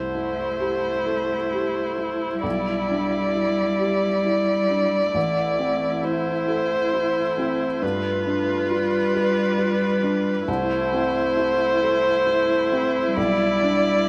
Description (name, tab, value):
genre	neoclassical piano and strings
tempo	67 BPM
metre	3/4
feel	rubato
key	G major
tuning	A4 = 440 Hz
part	muted violin	melody	0.0-14.1 s	B4 to D5	-25 LUFS	equal	none
part	muted cello	second line	0.0-14.1 s	G3 to A3	-31 LUFS	equal	none
part	felt-muted upright piano	accompaniment	0.0-14.1 s	A1 to B4	-30 LUFS	equal	none
part	muted viola	accompaniment	0.0-14.1 s	E4 to F4	-31 LUFS	equal	none
room	moderate studio reverb, RT60 0.5 s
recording	band playing live in one room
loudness	-22 LUFS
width	mono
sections	0.0-14.1 A section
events	none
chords	0.0 C6; 2.4 G6/B; 5.2 Am; 7.8 G7; 10.5 C6; 13.2 G6/B